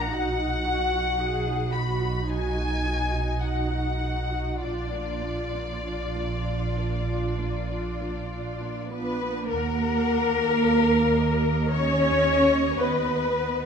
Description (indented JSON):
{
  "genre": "classical, slow romantic movement for string orchestra",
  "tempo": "48-56 BPM",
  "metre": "4/4",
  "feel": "rubato",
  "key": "Eb minor",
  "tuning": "A4 = 440 Hz",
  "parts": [
    { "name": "muted chamber violin section", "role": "melody", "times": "0.0-13.7 s", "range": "D5 to B5", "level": "-33 LUFS", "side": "left 4 dB", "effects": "none" },
    { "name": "muted chamber violin section", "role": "second line", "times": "0.0-13.7 s", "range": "Bb4 to B5", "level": "-29 LUFS", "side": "left 5 dB", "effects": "none" },
    { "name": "muted studio viola section", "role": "accompaniment", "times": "0.0-13.7 s", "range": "Bb3 to C#5", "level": "-30 LUFS", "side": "right 1 dB", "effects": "none" },
    { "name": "muted chamber cello section", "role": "bass", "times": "0.0-13.7 s", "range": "Bb3 to Ab4", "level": "-30 LUFS", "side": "right 3 dB", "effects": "none" },
    { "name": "muted chamber double bass section", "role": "bass", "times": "0.0-13.7 s", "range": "Bb1 to Eb2", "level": "-29 LUFS", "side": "right 2 dB", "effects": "none" }
  ],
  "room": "moderate recital hall reverb, RT60 1.6 s",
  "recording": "minimal, uncompressed stereo recording",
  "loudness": "-23 LUFS",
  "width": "side -6 dB against mid",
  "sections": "0.0-9.5 A section; 9.5-13.7 B section",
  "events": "none",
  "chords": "0.1 B; 4.6 Bb; 9.5 Ebm; 11.7 Badd9/D#",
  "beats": "| 0.10 1.19 2.28 3.43 | 4.61 5.84 7.07 8.31 | 9.49 10.61 11.71 12.79"
}